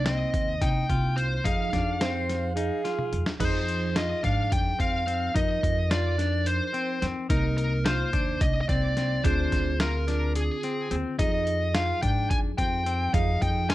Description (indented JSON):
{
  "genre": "progressive instrumental, band music in an uneven meter",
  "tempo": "216 BPM (eighths)",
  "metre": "7/8",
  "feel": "straight",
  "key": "F dorian",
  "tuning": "A4 = 440 Hz",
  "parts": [
    { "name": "smooth overdriven lead guitar", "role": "melody", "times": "0.0-13.7 s", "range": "Ab4 to Ab5", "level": "-29 LUFS", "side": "equal", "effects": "none" },
    { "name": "tine electric piano", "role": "accompaniment", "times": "0.0-13.7 s", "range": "C3 to Bb4", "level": "-35 LUFS", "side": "right 2 dB", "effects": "overdrive, slow stereo tremolo" },
    { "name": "semi-hollow electric guitar", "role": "arpeggios", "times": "0.0-13.7 s", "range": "C4 to F4", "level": "-33 LUFS", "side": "left 5 dB", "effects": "none" },
    { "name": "upright bass", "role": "bass", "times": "0.0-13.7 s", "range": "C2 to Ab2", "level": "-28 LUFS", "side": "equal", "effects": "none" },
    { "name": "boom bap sampler-style drum kit", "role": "drums", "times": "0.1-13.7 s", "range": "crash cymbal, hi-hat, kick drum, snare drum, toms", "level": "-28 LUFS", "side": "equal", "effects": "none" },
    { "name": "breathy alto saxophone", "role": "second line", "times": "2.0-3.4 s", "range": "Ab4 to C5", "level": "-32 LUFS", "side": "right 6 dB", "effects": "none" }
  ],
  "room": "light reverb",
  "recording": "none",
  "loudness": "-24 LUFS",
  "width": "side -16 dB against mid",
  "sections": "0.0-3.4 A section; 3.4-13.7 A section",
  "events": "drum fill 3.0-3.4",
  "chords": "0.0 Cm7; 1.4 Fm7; 7.3 Cm7; 9.2 Dm7b5; 11.2 Fm7",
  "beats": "0.06 0.34 0.61 0.89 1.17 | 1.45 1.73 2.01 2.29 2.56 2.84 3.12 | 3.40 3.68 3.96 4.24 4.51 4.79 5.07 | 5.35 5.63 5.91 6.18 6.46 6.74 7.02 | 7.30 7.58 7.85 8.13 8.41 8.69 8.96 | 9.24 9.52 9.80 10.08 10.35 10.63 10.91 | 11.19 11.47 11.74 12.02 12.30 12.58 12.86 | 13.13 13.41 13.69"
}